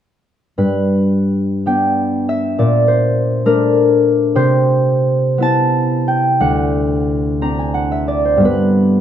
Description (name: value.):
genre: classical, solo harp piece.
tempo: 52-69 BPM (dotted quarters).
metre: 6/8.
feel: rubato.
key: G major.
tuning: A4 = 440 Hz.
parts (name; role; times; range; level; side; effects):
concert harp; solo; 0.6-9.0 s; D2 to A#5; -13 LUFS; equal; none.
room: moderate studio reverb, RT60 0.6 s.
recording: minimal, uncompressed stereo recording.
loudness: -13 LUFS.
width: side -10 dB against mid.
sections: 0.6-9.0 A section.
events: none.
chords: 0.6 G; 2.6 Bbmaj7; 4.4 Cmaj7; 6.4 Daug7; 8.4 G.